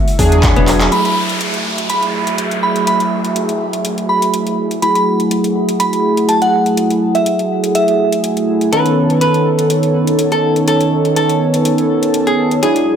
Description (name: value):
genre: deep house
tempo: 123 BPM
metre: 4/4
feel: swing 54% on 16ths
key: F# minor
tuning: A4 = 440 Hz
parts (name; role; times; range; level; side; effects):
- hollow soft pad; sustained chords; 0.0-13.0 s; G#3 to F#5; -21 LUFS; right 2 dB; chorus, sidechain pumping
- deep house drum kit; drums; 0.1-12.8 s; handclaps, hi-hat; -22 LUFS; left 1 dB; overdrive, studio reverb
- chorused polysynth; stabs; 0.2-13.0 s; D#3 to A4; -15 LUFS; equal; sidechain pumping, tape echo
- organ-like FM bass; bass; 0.2-0.9 s; E1 to E2; -14 LUFS; equal; sidechain pumping
- electronic kick drum; drums; 0.2-0.5 s; none; -14 LUFS; equal; overdrive, studio reverb
- vintage hollow-body jazz guitar; melody; 0.6-0.8, 8.7-13.0 s; B3 to B4; -19 LUFS; equal; tape echo
- glassy synth bell; melody; 0.9-8.1 s; E5 to B5; -17 LUFS; right 1 dB; chorus, vintage 12-bit sampler grit, tape echo
- downlifter; sound effects; 0.9-4.8 s; none; -23 LUFS; equal; none
room: moderate plate reverb, RT60 1.2 s, digital ambience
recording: none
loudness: -12 LUFS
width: side -8 dB against mid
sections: 0.9-13.0 A section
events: drum fill 0.7; band accent 0.8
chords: 0.0 E9; 0.9 F#m9; 8.7 B9